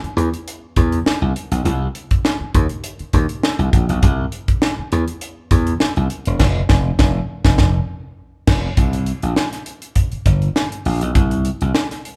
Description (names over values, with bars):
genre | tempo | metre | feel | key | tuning
funk | 101 BPM | 4/4 | straight | C mixolydian | A4 = 439 Hz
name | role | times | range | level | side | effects
slap bass | bass | 0.0-11.7 s | E1 to E2 | -22 LUFS | equal | none
crisp fusion drum kit | drums | 0.0-12.2 s | crash cymbal, hi-hat, kick drum, snare drum | -20 LUFS | equal | none
room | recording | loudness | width
light reverb | band playing live in one room | -18 LUFS | mono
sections
0.0-8.8 A section; 8.8-12.2 B section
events
band accent 6.4-8.8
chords
none